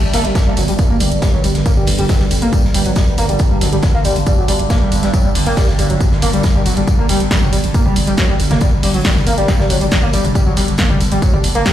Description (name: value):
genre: driving peak-time techno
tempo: 138 BPM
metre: 4/4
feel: straight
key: G harmonic minor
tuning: A4 = 440 Hz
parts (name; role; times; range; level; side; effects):
- growling 808-style bass; bass; 0.0-11.7 s; G1; -20 LUFS; equal; overdrive, sidechain pumping, low-pass filter
- overtone-sweeping drone; drone; 0.0-11.7 s; G2 to D3; -23 LUFS; right 2 dB; chorus, built-in reverb, sidechain pumping
- overdriven synth lead; riff; 0.1-11.7 s; F#3 to Bb3; -19 LUFS; left 1 dB; lush chorus, sidechain pumping, digital delay
- raw garage drum kit; drums; 0.1-11.7 s; hi-hat, snare drum, tambourine; -27 LUFS; left 2 dB; high-pass filter on hats, high-pass filter on snare, high-pass filter on perc, high-pass filter on room
- techno drum kit; drums; 0.1-11.7 s; hi-hat, snare drum, toms; -21 LUFS; equal; none
- electronic kick drum; drums; 0.4-11.7 s; none; -15 LUFS; equal; none
room: digital ambience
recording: played on a big sound system in a bare room, stone room reverb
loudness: -12 LUFS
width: side -12 dB against mid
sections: 0.0-11.7 A section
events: none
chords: 0.0 G5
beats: 0.35 0.79 1.22 | 1.66 2.09 2.53 2.96 | 3.40 3.83 4.27 4.70 | 5.13 5.57 6.00 6.44 | 6.87 7.31 7.74 8.18 | 8.61 9.05 9.48 9.92 | 10.35 10.79 11.22 11.66